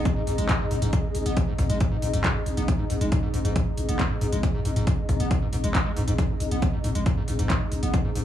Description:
driving peak-time techno; 137 BPM; 4/4; straight; G# minor; A4 = 439 Hz
overdriven acid bass; riff; 0.0-8.2 s; G#2 to B3; -30 LUFS; left 1 dB; wide subtle chorus, sidechain pumping, analog delay
growling 808-style bass; bass; 0.0-8.2 s; G#1; -27 LUFS; equal; sidechain pumping, low-pass filter
granular cloud pad; texture; 0.0-8.2 s; D#4 to D#5; -32 LUFS; left 2 dB; built-in reverb, sidechain pumping
electronic kick drum; drums; 0.1-8.0 s; -24 LUFS; equal
techno drum kit; drums; 0.1-8.2 s; handclaps, hi-hat; -33 LUFS; equal; overdrive, sidechain pumping on hats, sidechain pumping on cymbals
little or no reverb; dry, gritty hardware recording, small room reverb; -22 LUFS; side -11 dB against mid
0.0-8.2 A section
0.0 G#5
0.05 0.49 | 0.93 1.37 1.80 2.24 | 2.68 3.12 3.56 4.00 | 4.43 4.87 5.31 5.75 | 6.18 6.62 7.06 7.50 | 7.94

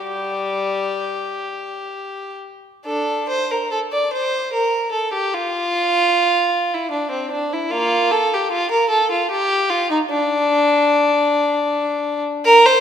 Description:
classical, baroque-style suite movement for unaccompanied violin; 62-80 BPM; 3/4; rubato; D minor; A4 = 439 Hz
warm violin; solo; 0.0-12.8 s; G3 to D5; -16 LUFS; equal
wet scoring stage reverb, RT60 1.6 s; minimal, uncompressed stereo recording; -16 LUFS; side -8 dB against mid
0.0-2.9 A section; 2.9-12.8 A section
| 0.04 0.99 1.92 | 2.86 3.72 4.54 | 5.34 6.15 6.92 | 7.72 8.53 9.32 | 10.09 10.86 11.65 | 12.44

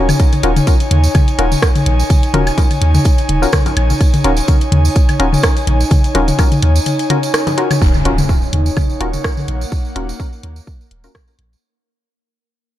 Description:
minimal techno; 126 BPM; 4/4; swing 55% on 16ths; Eb minor; A4 = 440 Hz
wavetable chord stab; stabs; 0.0-11.1 s; Db4 to Bb4; -21 LUFS; left 3 dB; digital delay
punchy sub bass; bass; 0.0-11.6 s; Eb1 to Eb2; -14 LUFS; equal; sidechain pumping
airy breathy pad; texture; 0.0-11.6 s; Eb4 to Ab5; -21 LUFS; equal; chorus, sidechain pumping
house drum kit; drums; 0.1-11.5 s; hi-hat, rim click; -21 LUFS; equal
electronic toms, woodblock and congas; percussion; 0.1-9.5 s; -19 LUFS; left 2 dB; digital delay
tambourine; percussion; 0.1-11.6 s; -28 LUFS; right 5 dB
electronic kick drum; drums; 0.2-11.3 s; -13 LUFS; equal
impact; sound effects; 7.8-9.7 s; -22 LUFS; equal
swarming drone; texture; 8.9-11.6 s; Bb3 to Bb4; -37 LUFS; left 1 dB; built-in reverb, sidechain pumping
light reverb; dark, warm production; -11 LUFS; side -13 dB against mid
0.0-7.8 A section; 7.8-11.6 B section
drop 0.0-7.8; break 6.9-7.8; fade-out on analog synth pad 7.8-11.6; fade-out 7.8-11.6; impact 7.8-9.7
0.0 Eb7(no3); 7.8 Ebm7
| 0.20 0.67 1.15 1.62 | 2.10 2.58 3.05 3.53 | 4.01 4.48 4.96 5.43 | 5.91 6.39 6.86 7.34 | 7.82 8.29 8.77 9.24 | 9.72 10.20 10.67 11.15

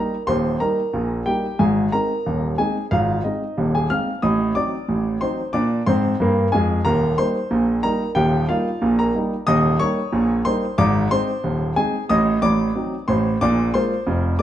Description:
ragtime piano; 91 BPM; 2/4; straight; Eb major; A4 = 439 Hz
dark grand piano; solo; 0.0-14.4 s; Eb1 to F6; -18 LUFS; equal
wet large studio reverb, RT60 0.9 s; band playing live in one room; -18 LUFS; side -11 dB against mid
0.0-14.4 A section
0.0 Eb; 1.6 Ab; 4.2 Adim7; 5.5 Bb7; 6.8 Eb; 9.5 Eb7; 10.8 Ab; 12.1 Adim7; 13.4 Bb7
| 0.28 0.94 | 1.59 2.25 | 2.91 3.57 | 4.22 4.88 | 5.54 6.19 | 6.85 7.50 | 8.16 8.81 | 9.47 10.13 | 10.78 11.44 | 12.10 12.75 | 13.41 14.07

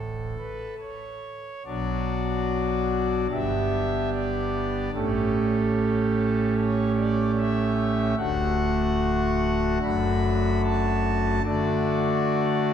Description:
classical, chorale-style piece for pipe organ; 74 BPM; 4/4; rubato; D major; A4 = 440 Hz
pipe organ, foundations; solo; 0.0-12.7 s; D1 to B5; -22 LUFS; equal
wet church reverb, RT60 2.5 s; -22 LUFS; side -8 dB against mid
0.0-1.7 A section; 1.7-12.7 B section
0.0 D5; 1.7 Bm; 3.3 G; 4.9 A7; 8.2 D; 9.8 D/F#; 11.4 D
0.80 | 1.66 2.49 3.31 4.12 | 4.93 5.76 6.57 7.38 | 8.18 8.98 9.82 10.64 | 11.44 12.23

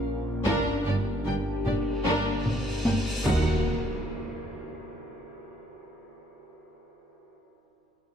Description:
cinematic, hybrid orchestral and electronic film score; 75 BPM; 4/4; straight; A4 = 440 Hz
dark analog pad; sustained chords; 0.0-3.7 s; Bb3 to Bb4; -34 LUFS; left 1 dB; chorus, phaser
wide detuned saw bass; bass; 0.0-3.7 s; Eb1 to Bb1; -35 LUFS; equal; chorus
dark symphonic violin section; melody; 0.5-3.7 s; Bb4 to G5; -35 LUFS; right 1 dB
warm symphonic violin section; second line; 0.5-3.7 s; D4 to Bb4; -36 LUFS; left 3 dB
warm symphonic viola section; accompaniment; 0.5-3.7 s; D4 to Eb4; -35 LUFS; right 1 dB
dark French horn section; sustained chords; 0.5-3.6 s; Bb3 to Gb4; -37 LUFS; left 4 dB
rich studio cello section; bass; 0.5-3.7 s; Eb2 to G2; -34 LUFS; right 2 dB
warm symphonic double bass section; bass; 0.5-3.7 s; G1 to Eb2; -32 LUFS; right 3 dB
taiko ensemble; drums; 0.5-4.8 s; -31 LUFS; left 1 dB
cymbal swell and impact; sound effects; 2.0-6.5 s; -36 LUFS; equal
moderate scoring stage reverb, RT60 2.0 s; -25 LUFS; side -7 dB against mid
0.0-3.7 A section; 3.7-6.9 B section
cymbal swell 2.0-3.7; drum fill 2.5-3.7; impact 3.7-6.9
0.5 Gm; 3.3 Ebm; 3.7 N.C.
| 0.46 1.26 2.06 2.86 | 3.66 4.46 5.26 6.06

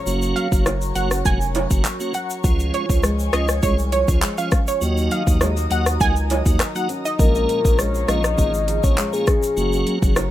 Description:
dancehall; 101 BPM; 4/4; straight; A4 = 438 Hz
analog pluck; melody; 0.0-7.2 s; Db5 to Ab5; -25 LUFS; right 2 dB; chorus, ping-pong delay
airy breathy pad; sustained chords; 0.0-10.3 s; F4 to Eb6; -31 LUFS; equal; chorus, phaser
nylon-string guitar; arpeggios; 0.0-10.3 s; Bb2 to Eb4; -29 LUFS; left 2 dB
tonewheel organ; accompaniment; 0.1-10.2 s; F3 to Gb4; -25 LUFS; right 3 dB; overdrive, chorus vibrato, sidechain pumping
saturated sub bass; bass; 0.1-10.3 s; F1 to Eb2; -22 LUFS; equal
deep house drum kit; drums; 0.1-10.3 s; handclaps, hi-hat, kick drum, rim click, shaker; -20 LUFS; equal
egg shaker and timbales; percussion; 0.1-10.3 s; -30 LUFS; right 3 dB
soft octave-layered synth lead; second line; 7.2-10.3 s; Ab4 to Eb5; -22 LUFS; left 4 dB; chorus, ping-pong delay
little or no reverb; rough home demo mix; -17 LUFS; side -13 dB against mid
0.0-10.3 A section
0.1 Gb; 2.4 Db; 4.8 Ebm; 7.2 Bbm7; 9.6 Gb
| 0.07 0.66 1.25 1.85 | 2.44 3.04 3.63 4.22 | 4.82 5.41 6.00 6.60 | 7.19 7.79 8.38 8.98 | 9.57 10.16

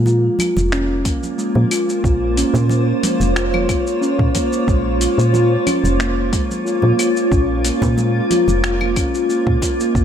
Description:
organic downtempo; 91 BPM; 4/4; straight; Bb minor; A4 = 442 Hz
granular cloud pad; sustained chords; 0.8-10.0 s; Bb3 to Eb5; -21 LUFS; equal; built-in reverb, sidechain pumping, shimmer reverb
steel tongue drum; arpeggios; 0.0-10.0 s; Ab3 to F4; -19 LUFS; equal; digital delay, shimmer reverb
woody FM bass; bass; 0.0-10.0 s; F1 to Bb2; -18 LUFS; equal; sidechain pumping
dusty soul sampler-style drum kit; drums; 0.1-10.0 s; claves, finger snaps, hi-hat, shaker; -25 LUFS; left 2 dB
congas; percussion; 0.1-9.8 s; -28 LUFS; right 1 dB
electronic kick drum; drums; 1.1-10.0 s; -20 LUFS; equal
light reverb; -14 LUFS; side -8 dB against mid
0.0-10.0 A section
0.0 Bbm7
0.06 0.72 1.38 | 2.04 2.70 3.36 4.02 | 4.68 5.34 6.00 6.66 | 7.32 7.97 8.63 9.29 | 9.95

